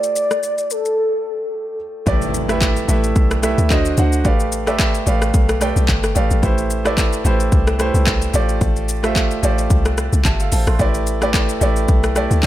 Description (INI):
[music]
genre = amapiano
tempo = 110 BPM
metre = 4/4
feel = swing 55% on 16ths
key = unclear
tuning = A4 = 440 Hz
[part]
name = warm velvety synth lead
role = melody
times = 0.0-1.8 s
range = A4 to D5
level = -19 LUFS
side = equal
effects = chorus, low-pass filter, digital delay
[part]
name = clear grand piano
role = accompaniment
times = 0.0-12.5 s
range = D3 to C6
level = -20 LUFS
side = right 2 dB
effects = none
[part]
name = deep house drum kit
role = drums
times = 0.0-12.5 s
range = handclaps, hi-hat, kick drum, rim click, shaker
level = -19 LUFS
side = equal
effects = overdrive
[part]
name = deep log drum bass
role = bass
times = 2.1-12.5 s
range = G1 to D2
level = -18 LUFS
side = equal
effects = none
[part]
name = impact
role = sound effects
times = 2.1-4.2 s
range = none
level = -28 LUFS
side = equal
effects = none
[sound]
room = digital ambience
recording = none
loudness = -15 LUFS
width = side -13 dB against mid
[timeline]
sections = 0.0-2.1 A section; 2.1-12.5 B section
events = filter sweep 0.0-2.1; break 1.0-2.1; drop 2.1-12.5; impact 2.1-4.2; grand piano fill 10.0-10.8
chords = 0.0 F6/A; 2.1 Em7/A; 3.7 D7b9; 4.2 G9/A; 6.4 Am9; 8.3 F6/A; 10.8 Em7/A